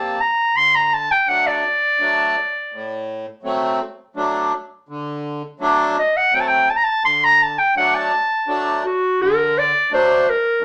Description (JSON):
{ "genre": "klezmer", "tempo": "83 BPM", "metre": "3/4", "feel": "straight", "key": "unclear", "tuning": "A4 = 440 Hz", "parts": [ { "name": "mellow clarinet", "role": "melody", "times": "0.0-10.6 s", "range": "F#4 to C6", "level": "-18 LUFS", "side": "equal", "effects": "none" }, { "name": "accordion", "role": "accompaniment", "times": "0.0-10.6 s", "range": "A2 to D4", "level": "-24 LUFS", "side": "equal", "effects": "none" } ], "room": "wet studio reverb, RT60 0.5 s", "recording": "none", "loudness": "-18 LUFS", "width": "mono", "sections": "0.0-9.2 A section; 9.2-10.6 B section", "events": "clarinet solo 0.0-9.2", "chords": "0.0 Gm; 0.6 D", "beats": "| 0.56 1.28 2.00 | 2.73 3.45 4.17 | 4.89 5.61 6.33 | 7.05 7.76 8.48 | 9.20 9.91 10.62" }